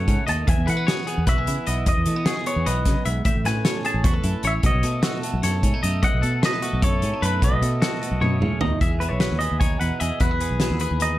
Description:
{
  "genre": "math rock and midwest emo",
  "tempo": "302 BPM (eighths)",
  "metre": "7/8",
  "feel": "straight",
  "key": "E major",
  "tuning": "A4 = 440 Hz",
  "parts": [
    { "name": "twangy electric guitar", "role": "melody", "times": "0.0-11.2 s", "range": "B4 to A5", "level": "-28 LUFS", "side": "left 1 dB", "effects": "slapback echo, plate reverb" },
    { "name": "twelve-string electric guitar", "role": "accompaniment", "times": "0.0-11.2 s", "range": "E2 to A4", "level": "-29 LUFS", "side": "right 5 dB", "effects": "phaser, plate reverb" },
    { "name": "twangy electric guitar", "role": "arpeggios", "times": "0.0-11.2 s", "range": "F#4 to E5", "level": "-30 LUFS", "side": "left 4 dB", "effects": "plate reverb" },
    { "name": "fingered electric bass", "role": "bass", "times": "0.0-11.2 s", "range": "A1 to E3", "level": "-24 LUFS", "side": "equal", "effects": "none" },
    { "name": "loose indie drum kit", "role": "drums", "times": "0.1-11.1 s", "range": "hi-hat, kick drum, snare drum, toms", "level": "-23 LUFS", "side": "equal", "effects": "none" }
  ],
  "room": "light reverb",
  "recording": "none",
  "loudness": "-19 LUFS",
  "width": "side -15 dB against mid",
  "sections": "0.0-8.8 A section; 8.8-11.2 B section",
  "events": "drum fill 8.2-8.8",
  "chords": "0.5 Emaj7; 3.3 Amaj7; 4.6 B7; 8.8 Emaj7"
}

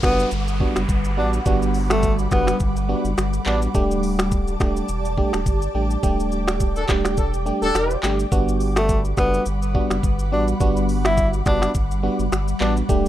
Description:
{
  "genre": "afrobeats",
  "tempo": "105 BPM",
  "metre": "4/4",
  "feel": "swing 55% on 16ths",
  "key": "G major",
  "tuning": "A4 = 440 Hz",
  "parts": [
    { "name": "clear tenor saxophone", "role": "melody", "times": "0.0-3.6, 8.8-12.7 s", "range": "A3 to E4", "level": "-25 LUFS", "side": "equal", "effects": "tape echo" },
    { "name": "FM electric piano", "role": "accompaniment", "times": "0.0-13.1 s", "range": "G3 to G4", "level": "-24 LUFS", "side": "right 2 dB", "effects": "chorus" },
    { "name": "ethereal airy pad", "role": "sustained chords", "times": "0.0-13.1 s", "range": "G3 to D6", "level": "-27 LUFS", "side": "right 1 dB", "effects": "ensemble chorus, built-in reverb, tremolo" },
    { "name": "saturated sub bass", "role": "bass", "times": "0.0-13.1 s", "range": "D1 to A1", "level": "-24 LUFS", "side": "equal", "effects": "none" },
    { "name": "afro-pop drum kit", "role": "drums", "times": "0.0-13.1 s", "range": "finger snaps, handclaps, hi-hat, kick drum, rim click, shaker", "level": "-23 LUFS", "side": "equal", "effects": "none" },
    { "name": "downlifter", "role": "sound effects", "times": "0.0-3.7 s", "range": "none", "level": "-35 LUFS", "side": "left 1 dB", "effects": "none" },
    { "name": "warm horn section", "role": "second line", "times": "6.8-8.0 s", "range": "D4 to A4", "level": "-23 LUFS", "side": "left 2 dB", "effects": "none" }
  ],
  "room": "little or no reverb",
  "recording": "rough home demo mix",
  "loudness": "-18 LUFS",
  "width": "side -13 dB against mid",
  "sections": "0.0-13.1 A section",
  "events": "band accent 6.0-8.3",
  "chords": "0.0 Gmaj7; 3.7 Dsus4; 8.3 Gmaj7"
}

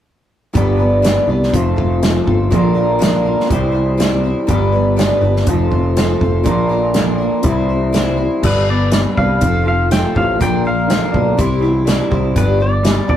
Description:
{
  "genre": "folk rock and heartland rock",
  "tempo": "122 BPM",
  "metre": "4/4",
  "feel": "straight",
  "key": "unclear",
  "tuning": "A4 = 440 Hz",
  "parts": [
    { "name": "picked twelve-string acoustic guitar", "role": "accompaniment", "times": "0.5-13.2 s", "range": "G2 to C5", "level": "-19 LUFS", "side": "equal", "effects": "none" },
    { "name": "electric guitar through a small old amp", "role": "riff", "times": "0.5-13.2 s", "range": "F2 to G4", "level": "-19 LUFS", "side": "equal", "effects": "harmonic tremolo" },
    { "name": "picked electric bass", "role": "bass", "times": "0.6-13.2 s", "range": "E1 to C2", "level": "-18 LUFS", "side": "equal", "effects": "none" },
    { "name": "natural country drum kit", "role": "drums", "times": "0.6-13.2 s", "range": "crash cymbal, hi-hat, kick drum, snare drum", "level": "-18 LUFS", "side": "equal", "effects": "none" },
    { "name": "pedal steel guitar", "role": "melody", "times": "8.5-13.2 s", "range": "B4 to G5", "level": "-20 LUFS", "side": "left 2 dB", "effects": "none" }
  ],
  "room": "moderate booth ambience, RT60 0.2 s",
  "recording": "rough rehearsal-room recording",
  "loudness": "-12 LUFS",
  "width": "side -10 dB against mid",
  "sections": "0.6-8.4 A section; 8.4-13.2 B section",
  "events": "none",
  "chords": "0.6 G; 1.5 F; 2.5 Bb; 3.5 C; 4.5 G; 5.5 F; 6.5 Bb; 7.4 C; 8.4 G; 9.4 F; 10.4 Bb; 11.4 C; 12.4 G"
}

